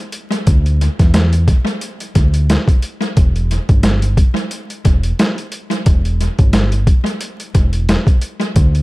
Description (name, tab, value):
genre	hip hop, boom-bap hip-hop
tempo	89 BPM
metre	4/4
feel	swing 55% on 16ths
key	E minor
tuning	A4 = 441 Hz
part	boom bap sampler-style drum kit	drums	0.1-8.8 s	hi-hat, kick drum, snare drum	-14 LUFS	equal	overdrive, tape echo
part	deep dub fingered electric bass	bass	0.5-8.8 s	E1 to E2	-14 LUFS	equal	none
room	little or no reverb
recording	echo-heavy mix, vinyl crackle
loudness	-12 LUFS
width	side -21 dB against mid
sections	0.0-3.2 A section; 3.2-8.8 A section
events	none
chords	none